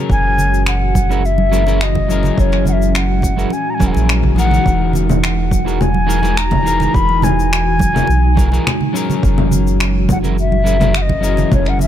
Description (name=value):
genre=sunset chillout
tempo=105 BPM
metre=4/4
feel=straight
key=unclear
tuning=A4 = 441 Hz
part: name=electric guitar at the edge of break-up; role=accompaniment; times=0.0-11.9 s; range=E3 to A#4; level=-21 LUFS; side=moving between left 7 dB and right 7 dB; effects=auto-pan, digital delay
part: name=ethereal airy pad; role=sustained chords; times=0.0-11.9 s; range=A#2 to C#5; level=-22 LUFS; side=left 1 dB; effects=ensemble chorus, built-in reverb
part: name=mellow wooden flute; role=melody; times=0.1-11.9 s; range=C#5 to B5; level=-19 LUFS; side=left 2 dB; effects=digital delay
part: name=round analog bass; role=bass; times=0.1-11.9 s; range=E1 to B1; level=-16 LUFS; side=equal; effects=none
part: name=electronic kick drum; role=drums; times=0.1-11.6 s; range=none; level=-18 LUFS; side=equal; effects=none
part: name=electronic shaker, finger snaps and congas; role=drums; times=0.1-11.9 s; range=none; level=-20 LUFS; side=left 2 dB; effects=none
part: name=congas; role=percussion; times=0.4-11.9 s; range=none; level=-23 LUFS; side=right 5 dB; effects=none
room=light reverb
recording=dark, warm production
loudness=-12 LUFS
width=side -10 dB against mid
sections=0.0-11.9 A section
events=none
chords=0.1 F#9; 4.7 Emaj9#11; 9.2 F#9